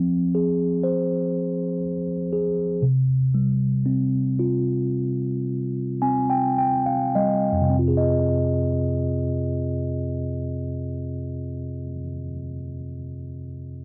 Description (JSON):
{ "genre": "pop", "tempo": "50-62 BPM", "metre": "4/4", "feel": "straight", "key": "F minor", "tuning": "A4 = 440 Hz", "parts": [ { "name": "mellow tine electric piano", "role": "accompaniment", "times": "0.0-13.8 s", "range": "F2 to Ab5", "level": "-24 LUFS", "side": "equal", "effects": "none" } ], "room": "light reverb", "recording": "dry, close 1970s-style studio recording", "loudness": "-24 LUFS", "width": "mono", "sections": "0.0-7.7 A section; 7.7-12.5 B section", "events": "slowing down 0.0-7.7; tine electric piano fill 5.5-7.7", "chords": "0.0 Fm; 2.8 Csus4; 7.7 Fm7", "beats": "0.34 1.33 2.32 | 3.34 4.39 5.47 6.58 | 7.75 8.94 10.13 11.32" }